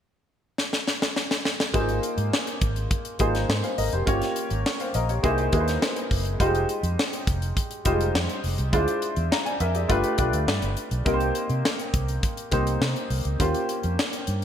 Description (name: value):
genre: polished 1980s jazz-funk pop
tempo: 103 BPM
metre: 4/4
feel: straight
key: Ab major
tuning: A4 = 440 Hz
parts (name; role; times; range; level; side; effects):
- crisp fusion drum kit; drums; 0.6-14.4 s; hi-hat, kick drum, snare drum; -26 LUFS; equal; gated reverb
- warm baby grand piano; accompaniment; 1.7-14.4 s; G3 to Bb5; -26 LUFS; equal; analog chorus
- vintage muted fingered electric bass; bass; 1.7-14.4 s; F1 to C3; -26 LUFS; equal; none
room: moderate plate reverb, RT60 2.5 s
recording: bright 1980s-style digital production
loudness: -22 LUFS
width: side -9 dB against mid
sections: 0.0-1.7 A section; 1.7-14.4 B section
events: drum fill 0.6-1.7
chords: 0.0 N.C.; 1.7 Ab69; 4.1 Gm7b5; 5.2 C7alt; 6.4 Fm7; 8.7 Dm7b5; 9.9 G7; 11.1 Cm7; 13.4 Eb13 (rootless)